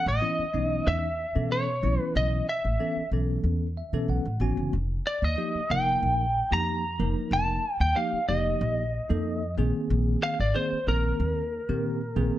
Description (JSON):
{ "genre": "electric jazz fusion", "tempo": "93 BPM", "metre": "4/4", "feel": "straight", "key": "unclear", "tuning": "A4 = 440 Hz", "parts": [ { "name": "lightly driven lead guitar", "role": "melody", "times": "0.0-12.4 s", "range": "Bb4 to Bb5", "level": "-28 LUFS", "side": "equal", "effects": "slapback echo" }, { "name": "bell-like tine electric piano", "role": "accompaniment", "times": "0.0-12.4 s", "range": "Eb3 to Ab5", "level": "-31 LUFS", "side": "equal", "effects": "fast stereo tremolo" }, { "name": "upright bass", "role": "bass", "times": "0.1-12.3 s", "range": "F1 to B2", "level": "-28 LUFS", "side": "equal", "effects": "none" } ], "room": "light reverb", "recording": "dark, warm production, lossy compression artefacts", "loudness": "-24 LUFS", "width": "side -13 dB against mid", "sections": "0.0-12.4 A section", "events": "tine electric piano fill 3.4-4.7", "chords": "0.0 B9sus4; 4.7 F9sus4; 9.6 Bb9sus4" }